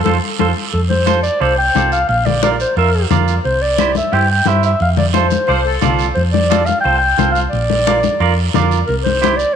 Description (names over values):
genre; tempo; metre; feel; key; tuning
latin, cumbia; 177 BPM; 4/4; straight; F major; A4 = 440 Hz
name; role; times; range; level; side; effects
mellow clarinet; melody; 0.0-9.6 s; A4 to G5; -16 LUFS; equal; none
clean electric guitar; accompaniment; 0.1-9.3 s; E4 to E5; -20 LUFS; right 10 dB; none
hollow-body short-scale fingered electric bass; bass; 0.1-9.4 s; Bb1 to G2; -18 LUFS; equal; none
congas; percussion; 0.1-9.4 s; none; -21 LUFS; left 11 dB; none
guiro; percussion; 0.1-9.6 s; none; -28 LUFS; right 13 dB; none
accordion; second line; 5.5-6.1 s; F4 to C5; -21 LUFS; left 9 dB; light tremolo tuning
room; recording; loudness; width
moderate echo chamber reverb, RT60 1.8 s, studio reverb; 1960s-style stereo with parts hard left and right; -12 LUFS; side -8 dB against mid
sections
0.7-9.6 A section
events
clean electric guitar fill 0.0-0.7; band accent 0.0-0.7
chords
0.0 F; 2.1 Bb; 3.4 C; 4.8 F; 7.5 Bb; 8.9 C